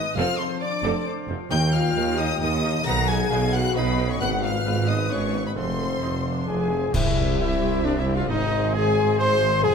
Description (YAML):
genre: cinematic, heroic adventure film score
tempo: 134 BPM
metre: 3/4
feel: straight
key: unclear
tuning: A4 = 445 Hz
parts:
  - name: rich symphonic violin section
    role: melody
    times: 0.0-9.7 s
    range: C5 to Bb6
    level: -31 LUFS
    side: left 3 dB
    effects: none
  - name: mellow clarinet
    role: second line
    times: 0.0-6.7 s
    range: A4 to G5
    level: -34 LUFS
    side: left 3 dB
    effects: none
  - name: mellow hollow silver concert flute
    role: second line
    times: 0.0-9.7 s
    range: Cb5 to C6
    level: -32 LUFS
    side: left 2 dB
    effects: none
  - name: rich symphonic violin section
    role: second line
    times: 0.0-9.7 s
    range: B4 to C6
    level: -34 LUFS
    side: left 3 dB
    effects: none
  - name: rich studio viola section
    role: accompaniment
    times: 0.0-9.7 s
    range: F3 to B4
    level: -33 LUFS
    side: right 3 dB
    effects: none
  - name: mellow French horn section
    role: sustained chords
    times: 0.0-9.7 s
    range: Cb4 to C5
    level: -27 LUFS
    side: left 4 dB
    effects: none
  - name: concert harp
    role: arpeggios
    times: 0.0-9.7 s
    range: F2 to C6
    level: -32 LUFS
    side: left 9 dB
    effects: none
  - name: clear tuba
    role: bass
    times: 0.2-9.7 s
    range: F1 to Eb2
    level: -30 LUFS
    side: right 4 dB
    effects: none
  - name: rich symphonic cello section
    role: bass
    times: 0.2-9.7 s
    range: C2 to B2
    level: -30 LUFS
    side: right 3 dB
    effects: none
  - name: warm studio double bass section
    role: bass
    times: 0.2-9.7 s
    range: F1 to Eb2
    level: -28 LUFS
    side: right 4 dB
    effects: none
  - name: warm trumpet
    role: stabs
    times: 6.5-9.7 s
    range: D4 to C5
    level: -29 LUFS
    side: right 3 dB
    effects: none
  - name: clash cymbals and concert bass drum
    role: percussion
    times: 6.9-7.8 s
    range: none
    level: -28 LUFS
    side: equal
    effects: none
room: moderate scoring stage reverb, RT60 1.6 s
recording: none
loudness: -20 LUFS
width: side -6 dB against mid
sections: 0.0-6.9 A section; 6.9-9.7 B section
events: band accent 6.9-7.4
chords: 0.2 F; 1.5 Eb; 2.9 B; 4.2 Abm; 5.6 F; 6.9 C; 8.3 Ab